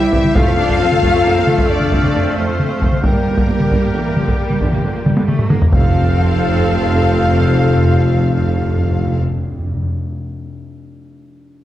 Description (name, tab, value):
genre	cinematic, epic orchestral film score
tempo	89 BPM (dotted quarters)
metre	12/8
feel	straight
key	F major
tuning	A4 = 440 Hz
part	rich studio violin section	melody	0.0-9.2 s	Bb4 to F5	-28 LUFS	left 5 dB	none
part	hollow concert flute	second line	0.0-9.2 s	Bb4 to F5	-25 LUFS	left 1 dB	none
part	rich symphonic violin section	second line	0.0-9.2 s	Bb4 to F5	-28 LUFS	left 4 dB	none
part	rich symphonic viola section	accompaniment	0.0-9.2 s	D3 to A4	-24 LUFS	right 1 dB	none
part	clear woodwind section	sustained chords	0.0-9.2 s	Bb3 to G5	-26 LUFS	equal	none
part	mellow French horn section	sustained chords	0.0-9.2 s	Bb3 to F4	-21 LUFS	left 4 dB	none
part	rich symphonic cello section	bass	0.0-9.2 s	F2 to D4	-24 LUFS	right 3 dB	none
part	rich symphonic double bass section	bass	0.0-9.2 s	F1 to G2	-22 LUFS	right 2 dB	none
part	mellow tuba	bass	0.1-9.2 s	F1 to C2	-22 LUFS	right 2 dB	none
part	solo taiko drums	drums	0.1-6.6 s	none	-16 LUFS	equal	none
part	timpani	percussion	0.4-1.0, 5.7-9.9 s	F2	-19 LUFS	left 1 dB	none
room	moderate scoring stage reverb, RT60 1.7 s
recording	worn, warbling old tape, cassette tape, warbly pitch drift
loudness	-12 LUFS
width	side -13 dB against mid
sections	0.0-5.7 A section; 5.7-8.4 B section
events	drum fill 5.1-5.7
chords	0.4 F; 3.0 Gm; 5.7 F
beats	| 0.36 1.03 1.70 2.37 | 3.05 3.72 4.39 5.06 | 5.73 6.41 7.08 7.75